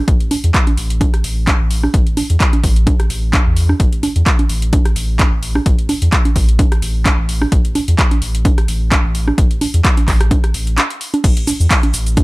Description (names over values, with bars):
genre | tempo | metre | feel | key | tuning
acid house | 129 BPM | 4/4 | swing 55% on 16ths | unclear | A4 = 444 Hz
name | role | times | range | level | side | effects
round analog bass | bass | 0.1-12.2 s | A1 to E2 | -17 LUFS | equal | sidechain pumping
booming analog drum machine | drums | 0.1-12.2 s | congas, crash cymbal, handclaps, hi-hat, rim click, shaker | -18 LUFS | right 1 dB | none
electronic kick drum | drums | 0.1-12.2 s | none | -14 LUFS | equal | overdrive
room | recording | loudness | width
little or no reverb | none | -12 LUFS | side -22 dB against mid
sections
0.0-11.2 A section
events
none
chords
none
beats
| 0.08 0.54 1.01 1.47 | 1.94 2.40 2.87 3.33 | 3.80 4.26 4.73 5.20 | 5.66 6.12 6.59 7.05 | 7.52 7.99 8.45 8.92 | 9.38 9.85 10.31 10.78 | 11.24 11.71 12.17